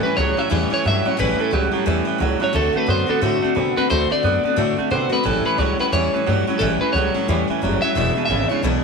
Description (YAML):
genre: rockabilly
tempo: 177 BPM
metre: 4/4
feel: swing 61% on 8ths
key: A mixolydian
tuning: A4 = 442 Hz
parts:
  - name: electric guitar at the edge of break-up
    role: melody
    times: 0.0-8.6 s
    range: F#4 to E5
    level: -22 LUFS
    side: left 1 dB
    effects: tape echo
  - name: picked steel-string acoustic guitar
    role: accompaniment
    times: 0.0-8.8 s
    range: E2 to F#4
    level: -23 LUFS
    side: left 11 dB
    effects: none
  - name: twangy electric guitar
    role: riff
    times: 0.0-8.8 s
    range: E2 to B3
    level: -23 LUFS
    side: right 12 dB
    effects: analog chorus
  - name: upright bass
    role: bass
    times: 0.0-8.8 s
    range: E1 to C3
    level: -23 LUFS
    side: equal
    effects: none
room: moderate echo chamber reverb, RT60 1.5 s, small room reverb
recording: 1960s-style stereo with parts hard left and right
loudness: -17 LUFS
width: side -4 dB against mid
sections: 0.0-8.8 A section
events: none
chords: 0.0 A7; 2.5 D7; 5.3 A7; 8.0 E7